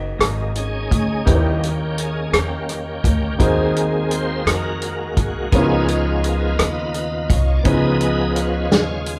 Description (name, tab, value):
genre	slow gospel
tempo	56 BPM (dotted quarters)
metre	6/8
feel	straight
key	unclear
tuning	A4 = 440 Hz
part	warm upright piano	accompaniment	0.0-9.2 s	C#3 to C#5	-26 LUFS	equal	none
part	mellow French horn section	sustained chords	0.0-9.2 s	C#3 to D#5	-35 LUFS	equal	none
part	upright bass	bass	0.0-9.2 s	F#1 to E#2	-25 LUFS	equal	none
part	bright tonewheel organ	sustained chords	0.2-9.2 s	D#3 to D#5	-26 LUFS	equal	fast rotary speaker, overdrive, chorus vibrato
part	warm soul drum kit	drums	0.2-9.2 s	hi-hat, kick drum, rim click, snare drum	-22 LUFS	equal	none
room	wet large studio reverb, RT60 1.4 s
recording	band playing live in one room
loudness	-19 LUFS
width	mono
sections	0.0-9.2 A section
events	tonewheel organ solo 0.0-9.2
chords	0.0 F#69; 1.3 D#7b9; 3.4 G#9/D#; 5.5 C#13; 7.7 C#9